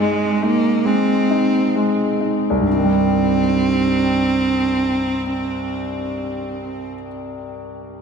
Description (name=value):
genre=pop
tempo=65 BPM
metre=4/4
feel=straight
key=C minor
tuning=A4 = 440 Hz
part: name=rich cello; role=melody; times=0.0-6.9 s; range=Ab3 to C4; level=-20 LUFS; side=right 1 dB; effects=tape echo
part: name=warm concert grand piano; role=accompaniment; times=0.0-8.0 s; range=C2 to Eb4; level=-19 LUFS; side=right 1 dB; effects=wide subtle chorus
room=moderate huge ambient reverb, RT60 4.7 s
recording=dreamy mix soaked in reverb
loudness=-16 LUFS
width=side -6 dB against mid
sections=0.0-2.7 A section; 2.7-6.4 B section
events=slowing down 0.0-2.7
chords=0.0 Ab; 2.7 Cm